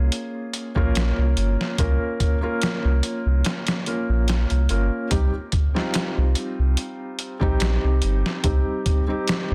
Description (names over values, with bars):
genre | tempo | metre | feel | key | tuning
trip hop | 72 BPM | 4/4 | swing 53% on 16ths | C phrygian | A4 = 440 Hz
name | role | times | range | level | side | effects
felt-muted upright piano | accompaniment | 0.0-9.5 s | G3 to Bb4 | -29 LUFS | equal | tremolo, tape echo
warm sub bass | bass | 0.0-9.5 s | G1 to C2 | -22 LUFS | equal | tube saturation
trip hop sampler-style drum kit | drums | 0.1-9.5 s | hi-hat, kick drum, snare drum | -26 LUFS | equal | small room ambience
room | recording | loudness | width
little or no reverb | dense, heavily limited modern master | -23 LUFS | mono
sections
0.0-9.5 A section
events
none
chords
0.0 Bbm; 5.1 Cm